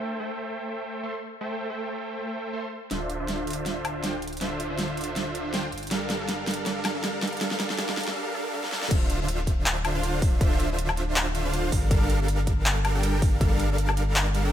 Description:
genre	future bass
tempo	160 BPM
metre	4/4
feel	swing 55% on 16ths, half-time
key	D minor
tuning	A4 = 445 Hz
part	supersaw chords	riff	0.0-14.5 s	D3 to C6	-29 LUFS	right 1 dB	sidechain pumping, low-pass filter, ping-pong delay
part	saturated sub bass	bass	2.9-14.5 s	D1 to G1	-29 LUFS	equal	tube saturation, sidechain pumping
part	big-room dance drum kit	drums	2.9-14.4 s	crash cymbal, handclaps, hi-hat, snare drum, woodblock	-29 LUFS	equal	low-pass filter on snare, low-pass filter on hats, low-pass filter on perc, low-pass filter on cymbals, low-pass filter on room
part	electronic kick drum	drums	8.9-13.5 s	none	-23 LUFS	equal	none
room	light reverb, digital ambience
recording	high-pass filter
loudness	-24 LUFS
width	side -11 dB against mid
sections	0.0-2.9 A section; 2.9-8.9 B section; 8.9-14.5 C section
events	build-up 2.9-8.9; drum fill 2.9-8.2, 8.6; filter sweep on supersaw synth 2.9-8.9; filter sweep 2.9-8.9; drop 8.9-14.5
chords	0.0 Am7; 2.9 Dm7; 5.7 Gm7; 8.9 Dm7; 11.7 Gm7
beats	0.28 0.66 1.03 | 1.41 1.78 2.16 2.54 | 2.91 3.29 3.66 4.04 | 4.41 4.79 5.16 5.54 | 5.91 6.29 6.66 7.04 | 7.41 7.79 8.16 8.54 | 8.91 9.29 9.66 10.04 | 10.41 10.79 11.16 11.54 | 11.91 12.29 12.66 13.04 | 13.41 13.79 14.16

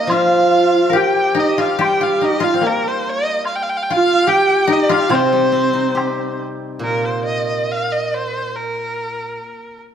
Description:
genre	chinese traditional, Chinese chamber ensemble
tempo	71 BPM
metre	2/4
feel	rubato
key	C yu mode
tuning	A4 = 440 Hz
part	rich erhu	melody	0.0-9.8 s	Bb4 to G5	-20 LUFS	equal	none
part	clear horsehead fiddle	second line	0.0-6.4 s	Bb3 to G4	-18 LUFS	right 3 dB	none
part	koto	second line	0.0-7.7 s	Bb3 to Bb4	-20 LUFS	left 6 dB	none
part	steel-string zither	accompaniment	0.0-9.4 s	Bb2 to G4	-21 LUFS	left 2 dB	none
part	woodblock	percussion	0.1-6.2 s	none	-27 LUFS	left 1 dB	none
room	moderate scoring stage reverb, RT60 1.7 s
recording	none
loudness	-14 LUFS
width	side -8 dB against mid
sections	0.0-6.8 A section; 6.8-9.9 B section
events	none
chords	none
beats	| 0.10 0.96 | 1.80 2.63 | 3.45 4.28 | 5.11 5.97 | 6.83 7.69 | 8.54 9.38

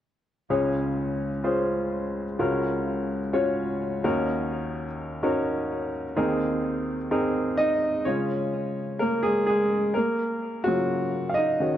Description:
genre	pop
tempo	127 BPM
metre	4/4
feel	swing 56% on 16ths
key	Db major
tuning	A4 = 436 Hz
part	clear baby grand piano	solo	0.5-11.8 s	Db2 to F5	-24 LUFS	equal	none
room	moderate large studio reverb, RT60 1.2 s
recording	worn, warbling old tape, cassette tape, warbly pitch drift, lossy compression artefacts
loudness	-24 LUFS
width	side -11 dB against mid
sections	0.5-8.1 A section; 8.1-11.8 B section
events	grand piano solo 8.1-11.8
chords	0.5 Db; 2.4 Gbmaj7/Db; 4.0 Ebm7; 6.2 Abadd9/Eb; 8.1 Db; 10.0 Gbmaj7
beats	| 0.50 0.97 1.44 1.92 | 2.39 2.86 3.34 3.81 | 4.28 4.76 5.23 5.70 | 6.17 6.65 7.12 7.59 | 8.07 8.54 9.01 9.48 | 9.96 10.43 10.90 11.38

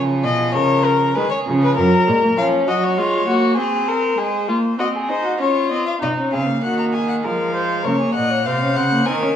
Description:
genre	classical, baroque-style fugue for string quartet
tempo	99 BPM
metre	3/4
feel	straight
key	unclear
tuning	A4 = 436 Hz
part	warm violin	melody	0.0-9.4 s	A#4 to Bb5	-22 LUFS	left 5 dB	none
part	dark violin	second line	0.0-9.4 s	C#4 to D#5	-21 LUFS	left 1 dB	none
part	warm viola	accompaniment	0.0-9.3 s	E#3 to Eb4	-22 LUFS	right 1 dB	none
part	rich cello	bass	0.0-2.2, 6.0-9.4 s	F#2 to F3	-21 LUFS	right 2 dB	none
room	moderate recital hall reverb, RT60 1.6 s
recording	worn, warbling old tape, cassette tape, warbly pitch drift, studio reverb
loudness	-16 LUFS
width	side -9 dB against mid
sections	0.0-6.0 A section; 6.0-9.4 B section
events	none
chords	0.0 C#; 0.6 C#7; 1.8 F#; 2.4 C#/E#; 3.6 G#/B#; 4.2 G#; 5.4 C#; 6.0 Cm7b5; 7.2 Fm; 7.9 A#m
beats	| 0.56 1.17 1.77 | 2.38 2.98 3.58 | 4.18 4.79 5.40 | 6.02 6.63 7.25 | 7.85 8.46 9.06

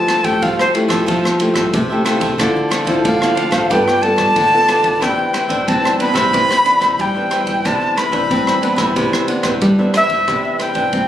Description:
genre	samba and choro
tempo	91 BPM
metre	4/4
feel	straight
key	C major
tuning	A4 = 439 Hz
part	breathy bright jazz flute	melody	0.0-11.1 s	C5 to B5	-15 LUFS	left 1 dB	none
part	nylon-string guitar	accompaniment	0.0-11.1 s	G2 to A4	-20 LUFS	left 1 dB	none
part	nylon-string guitar	bass	0.0-11.1 s	G2 to C4	-20 LUFS	equal	none
part	cavaquinho	accompaniment	0.1-11.1 s	D4 to F5	-24 LUFS	right 3 dB	none
part	open jazz drum kit	drums	0.1-11.1 s	kick drum, ride cymbal, rim click	-22 LUFS	equal	none
room	light reverb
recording	recorded on a phone in the room, club reverb, compression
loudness	-13 LUFS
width	side -11 dB against mid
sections	0.0-10.3 A section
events	flute solo 0.0-10.3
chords	0.0 Fmaj9; 2.4 Dm9; 3.7 G9; 5.0 Cmaj9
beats	0.43 1.09 1.74 | 2.40 3.06 3.71 4.37 | 5.02 5.68 6.34 6.99 | 7.65 8.30 8.96 9.62 | 10.27 10.93

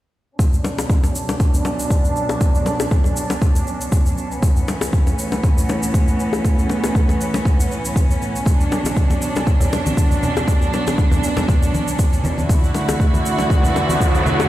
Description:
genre	afro house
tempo	119 BPM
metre	4/4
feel	swing 55% on 16ths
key	B minor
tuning	A4 = 440 Hz
part	warm studio string section	sustained chords	0.4-14.5 s	A2 to F#4	-21 LUFS	right 1 dB	sidechain pumping, low-pass filter
part	cabasa	drums	0.4-14.5 s	none	-32 LUFS	right 1 dB	studio reverb
part	electronic kick drum	drums	0.4-14.1 s	none	-16 LUFS	equal	studio reverb
part	bongos	percussion	0.6-14.5 s	none	-26 LUFS	left 3 dB	none
part	congas	percussion	8.5-14.4 s	none	-24 LUFS	equal	none
part	riser	sound effects	13.1-14.5 s	none	-24 LUFS	equal	none
room	light reverb, small room ambience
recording	played on a big sound system in a bare room, stone room reverb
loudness	-16 LUFS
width	side -14 dB against mid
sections	0.4-14.5 A section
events	filter sweep on string section 0.4-14.5; riser 13.1-14.5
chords	0.4 Bm; 4.4 A; 8.5 Bm; 12.5 D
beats	| 0.40 0.90 1.40 1.91 | 2.41 2.92 3.42 3.92 | 4.43 4.93 5.44 5.94 | 6.45 6.95 7.45 7.96 | 8.46 8.97 9.47 9.97 | 10.48 10.98 11.49 11.99 | 12.50 13.00 13.50 14.01

